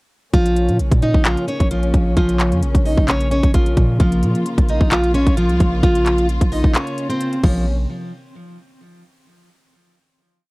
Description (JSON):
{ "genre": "hip hop, trap", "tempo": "131 BPM", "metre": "4/4", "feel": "half-time", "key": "Bb minor", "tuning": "A4 = 441 Hz", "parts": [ { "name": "picked plugged-in steel-string acoustic guitar", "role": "melody", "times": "0.3-7.6 s", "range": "F3 to Eb5", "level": "-19 LUFS", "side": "equal", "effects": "low-pass filter, tape echo" }, { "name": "dark studio string section", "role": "sustained chords", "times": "0.3-7.6 s", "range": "C3 to F4", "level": "-27 LUFS", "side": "left 1 dB", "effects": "none" }, { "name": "long sustained 808-style bass", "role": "bass", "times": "0.3-7.9 s", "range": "Bb1 to Bb2", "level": "-20 LUFS", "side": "equal", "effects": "none" }, { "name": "trap drum kit", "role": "drums", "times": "0.3-7.5 s", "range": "crash cymbal, handclaps, hi-hat, kick drum", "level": "-16 LUFS", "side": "equal", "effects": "none" } ], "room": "little or no reverb", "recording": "dark, warm production", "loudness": "-14 LUFS", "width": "side -24 dB against mid", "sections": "0.3-7.7 hook; 7.7-9.5 final hit", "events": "break 6.7-7.7", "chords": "0.3 Bbm; 7.7 N.C." }